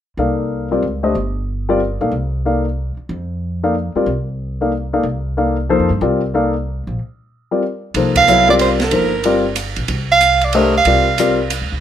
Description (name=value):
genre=modal jazz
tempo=185 BPM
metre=3/4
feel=swing 64% on 8ths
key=C dorian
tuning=A4 = 440 Hz
part: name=warm concert grand piano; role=accompaniment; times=0.2-11.4 s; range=F3 to F5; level=-16 LUFS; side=left 3 dB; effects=none
part: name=upright bass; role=bass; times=0.2-11.8 s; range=G1 to G2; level=-22 LUFS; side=equal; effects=none
part: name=open jazz drum kit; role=drums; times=7.9-11.6 s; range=hi-hat, kick drum, ride cymbal, snare drum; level=-23 LUFS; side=right 4 dB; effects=none
part: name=clear soprano saxophone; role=melody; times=8.2-11.4 s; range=Bb4 to F5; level=-13 LUFS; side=right 5 dB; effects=plate reverb
room=moderate studio reverb, RT60 0.8 s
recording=none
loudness=-14 LUFS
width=side -10 dB against mid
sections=0.2-8.0 A section; 8.0-11.8 B section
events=break 7.0-8.0; band accent 8.1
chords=0.2 Cm11; 6.0 Bb; 8.0 Cm11; 9.9 Bb/C